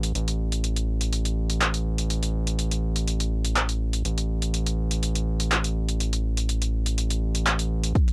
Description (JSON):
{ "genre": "melodic techno", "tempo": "123 BPM", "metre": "4/4", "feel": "straight", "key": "unclear", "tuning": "A4 = 441 Hz", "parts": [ { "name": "gritty driven synth bass", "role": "bass", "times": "0.0-7.9 s", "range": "A1", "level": "-24 LUFS", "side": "equal", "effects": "sidechain pumping" }, { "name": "punchy analog drum machine", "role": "drums", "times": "0.0-8.1 s", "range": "handclaps, hi-hat", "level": "-26 LUFS", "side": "equal", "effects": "overdrive, sidechain pumping on hats, cassette tape" }, { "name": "electronic kick drum", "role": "drums", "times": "8.0-8.1 s", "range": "none", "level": "-18 LUFS", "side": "equal", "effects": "cassette tape" } ], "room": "little or no reverb", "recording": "home recording on cassette", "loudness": "-23 LUFS", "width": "side -32 dB against mid", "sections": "0.0-8.0 A section", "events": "none", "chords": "none" }